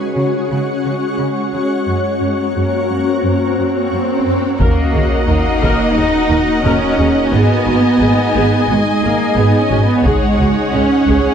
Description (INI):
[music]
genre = cinematic, hybrid orchestral and electronic film score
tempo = 88 BPM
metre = 4/4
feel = straight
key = unclear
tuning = A4 = 440 Hz
[part]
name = shimmering ambient pad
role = sustained chords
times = 0.0-11.3 s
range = G#3 to F#5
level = -17 LUFS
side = left 2 dB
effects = chorus, built-in reverb
[part]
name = rich symphonic cello section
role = bass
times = 0.2-11.3 s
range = F#2 to D#4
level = -18 LUFS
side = right 2 dB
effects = none
[part]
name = swell and sub drop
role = sound effects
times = 3.2-7.3 s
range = none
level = -21 LUFS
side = equal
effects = none
[part]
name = rich symphonic violin section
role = second line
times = 4.6-11.3 s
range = C#5 to G#5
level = -21 LUFS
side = left 4 dB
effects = none
[part]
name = warm symphonic viola section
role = accompaniment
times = 4.6-11.3 s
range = F#4 to D#5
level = -21 LUFS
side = right 1 dB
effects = none
[part]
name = clear symphonic double bass section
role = bass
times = 4.6-11.1 s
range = G#1 to D#2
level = -18 LUFS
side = right 2 dB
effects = none
[part]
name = taiko ensemble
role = drums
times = 4.6-5.9, 10.0-11.3 s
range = none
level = -19 LUFS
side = equal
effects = none
[sound]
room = moderate scoring stage reverb, RT60 1.5 s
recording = dark, warm production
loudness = -12 LUFS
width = side -8 dB against mid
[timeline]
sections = 0.0-4.6 A section; 4.6-11.3 B section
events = build-up 0.0-4.6; swell 3.2-4.6; impact 4.6-7.3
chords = 0.0 C#sus4; 1.9 F#; 4.6 D#m; 7.3 G#m; 10.0 C#sus4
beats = 0.50 1.19 | 1.87 2.55 3.23 3.91 | 4.59 5.28 5.96 6.64 | 7.32 8.00 8.69 9.37 | 10.05 10.73